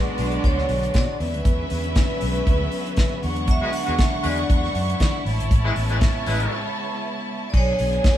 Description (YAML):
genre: disco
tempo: 118 BPM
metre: 4/4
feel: swing 56% on 16ths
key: unclear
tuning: A4 = 437 Hz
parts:
  - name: vibraphone with hard mallets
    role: melody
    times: 0.0-8.2 s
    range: B4 to F#5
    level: -27 LUFS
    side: right 1 dB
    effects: none
  - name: rich symphonic violin section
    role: second line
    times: 0.0-8.2 s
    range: G#3 to C#6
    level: -28 LUFS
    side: equal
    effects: none
  - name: clear studio string section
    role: sustained chords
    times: 0.0-8.2 s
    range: C#3 to E4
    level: -30 LUFS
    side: equal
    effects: none
  - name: fingered electric bass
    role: bass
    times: 0.2-8.0 s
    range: G#1 to E3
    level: -25 LUFS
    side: equal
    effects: none
  - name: damped 70s drum kit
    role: drums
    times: 0.2-8.2 s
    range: crash cymbal, hi-hat, kick drum, snare drum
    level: -21 LUFS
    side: equal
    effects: none
  - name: clear horn section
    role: stabs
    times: 3.6-6.6 s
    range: G#3 to B4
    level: -28 LUFS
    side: left 2 dB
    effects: none
room: moderate stone room reverb, RT60 1.0 s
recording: band playing live in one room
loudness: -19 LUFS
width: side -12 dB against mid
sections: 0.0-7.5 A section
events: break 6.5-7.5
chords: 0.0 Bm69; 1.2 E13; 5.3 Amaj9; 7.5 Bm69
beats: 0.44 0.94 | 1.45 1.96 2.47 2.97 | 3.48 3.99 4.50 5.00 | 5.51 6.02 6.52 7.03 | 7.54 8.04